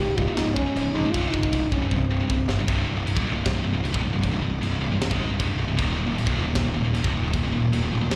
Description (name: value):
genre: heavy metal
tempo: 155 BPM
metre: 4/4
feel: straight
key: C phrygian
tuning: A4 = 440 Hz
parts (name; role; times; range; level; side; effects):
- mellow French horn; melody; 0.0-2.5 s; C4 to G4; -29 LUFS; equal; slapback echo, digital delay
- scooped high-gain guitar; riff; 0.0-8.2 s; C2 to Ab3; -29 LUFS; equal; distortion
- fuzz picked electric bass; bass; 0.0-8.2 s; C1 to Bb1; -29 LUFS; equal; overdrive
- tight metal drum kit; drums; 0.2-8.2 s; china cymbal, kick drum, snare drum; -31 LUFS; equal; none
room: studio ambience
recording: live gig heard through the venue's PA, recital hall reverb, lossy compression artefacts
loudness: -24 LUFS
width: mono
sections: 0.0-2.7 A section; 2.7-8.2 B section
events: drum fill 1.9-2.7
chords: 0.0 Db5; 1.1 Cm; 5.8 Eb5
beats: 0.36 0.75 | 1.14 1.52 1.91 2.30 | 2.69 3.07 3.46 3.85 | 4.23 4.62 5.01 5.40 | 5.79 6.17 6.56 6.95 | 7.34 7.72 8.11